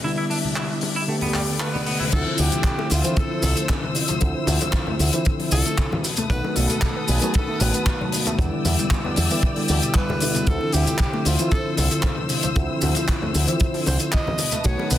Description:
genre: nu-disco, nu disco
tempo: 115 BPM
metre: 4/4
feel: straight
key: D dorian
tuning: A4 = 442 Hz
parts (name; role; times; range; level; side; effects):
- tine electric piano; accompaniment; 0.0-15.0 s; D3 to G4; -26 LUFS; equal; ensemble chorus, sidechain pumping, slapback echo
- warm studio string section; sustained chords; 0.0-15.0 s; B3 to E6; -31 LUFS; left 3 dB; sidechain pumping
- clean electric guitar; riff; 0.0-2.0 s; G3 to E4; -29 LUFS; right 1 dB; wide subtle chorus, low-pass filter, slapback echo
- tight funk drum kit; drums; 0.3-15.0 s; crash cymbal, handclaps, hi-hat, shaker; -26 LUFS; left 2 dB; none
- bongos and congas; percussion; 0.3-14.9 s; none; -32 LUFS; left 2 dB; none
- reverse cymbal; sound effects; 1.5-2.1 s; none; -33 LUFS; left 6 dB; none
- breathy tenor saxophone; melody; 1.3-15.0 s; F4 to Eb5; -30 LUFS; right 1 dB; tape echo
- wide unison pluck; arpeggios; 2.1-15.0 s; B2 to B3; -31 LUFS; left 1 dB; sidechain pumping, tape echo
- picked electric bass with an envelope filter; bass; 2.1-15.0 s; A1 to E2; -22 LUFS; equal; tube saturation, sidechain pumping
- kick drum; drums; 2.1-14.8 s; none; -22 LUFS; equal; soft clipping on snare
room: light reverb, small room ambience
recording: dense, heavily limited modern master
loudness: -19 LUFS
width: side -12 dB against mid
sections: 0.0-2.1 A section; 2.1-15.0 B section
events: reverse cymbal 1.5-2.1; drop 2.1-15.0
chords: 0.0 Em7; 1.1 A9sus4; 2.1 Dm9; 6.0 B7; 8.4 Em7; 10.5 Dm9; 14.4 B7

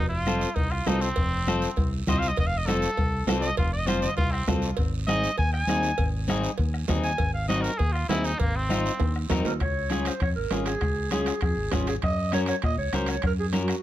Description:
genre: latin, cumbia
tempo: 199 BPM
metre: 4/4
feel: straight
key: unclear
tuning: A4 = 440 Hz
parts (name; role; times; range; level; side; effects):
- clear trumpet; melody; 0.0-9.1 s; Bb3 to Ab5; -30 LUFS; equal; analog delay
- fingered electric bass; bass; 0.0-13.7 s; F1 to Bb2; -29 LUFS; equal; none
- electric guitar at the edge of break-up; accompaniment; 0.3-13.7 s; C4 to C5; -29 LUFS; left 4 dB; none
- bombo; percussion; 0.3-13.8 s; none; -28 LUFS; left 1 dB; none
- congas; percussion; 0.3-13.7 s; none; -33 LUFS; right 2 dB; none
- guiro; percussion; 0.3-13.8 s; none; -40 LUFS; right 7 dB; none
- cowbell and timbales; percussion; 0.6-13.8 s; none; -35 LUFS; right 6 dB; none
- growling clarinet; second line; 9.5-13.8 s; F4 to Eb5; -30 LUFS; right 2 dB; none
room: light reverb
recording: close, detailed microphones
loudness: -23 LUFS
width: side -13 dB against mid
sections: 0.0-9.6 A section; 9.6-13.8 B section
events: trumpet solo 0.0-9.6; drum fill 9.0-9.6; clarinet solo 9.6-13.8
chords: 0.0 F; 4.8 Ab; 9.6 Db; 12.0 Gb

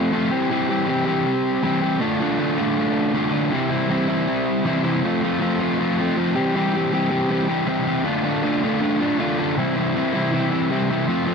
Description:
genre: rock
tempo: 159 BPM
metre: 4/4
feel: straight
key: C major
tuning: A4 = 440 Hz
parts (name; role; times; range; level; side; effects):
- overdriven electric guitar; solo; 0.0-11.3 s; C3 to G4; -19 LUFS; equal; none
room: light reverb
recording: dry, close 1970s-style studio recording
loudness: -19 LUFS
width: side -5 dB against mid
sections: 0.0-5.0 A section; 5.0-11.3 B section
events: none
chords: 0.3 C/E; 2.0 Dm; 3.5 C; 5.0 F; 6.4 C/E; 8.1 Dm; 9.6 C

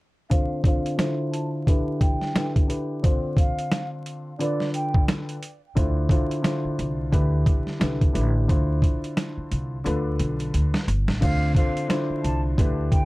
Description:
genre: hip hop, boom-bap hip-hop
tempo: 88 BPM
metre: 4/4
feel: swing 59% on 16ths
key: D dorian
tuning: A4 = 442 Hz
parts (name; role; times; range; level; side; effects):
- breathy mellow silver concert flute; melody; 0.3-5.1, 11.2-13.1 s; D5 to A5; -32 LUFS; right 1 dB; high-pass filter, low-pass filter, ping-pong delay
- dark grand piano; accompaniment; 0.3-13.1 s; D3 to C5; -27 LUFS; left 1 dB; cassette tape, high-pass filter, low-pass filter
- boom bap sampler-style drum kit; drums; 0.3-13.1 s; crash cymbal, hi-hat, kick drum, snare drum; -22 LUFS; equal; none
- upright bass; bass; 5.8-12.9 s; G1 to D2; -24 LUFS; equal; none
room: little or no reverb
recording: dark, warm production, vinyl crackle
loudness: -21 LUFS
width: side -20 dB against mid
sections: 0.3-11.2 A section; 11.2-13.1 B section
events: filter sweep 0.3-11.2; drum fill 9.9-11.2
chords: 0.3 Dm7; 1.7 G6/D; 3.0 Dm7; 4.4 Dm6; 5.8 Dm7; 7.1 Cmaj7/D; 8.5 Dm7; 9.9 G7; 11.2 Dm7

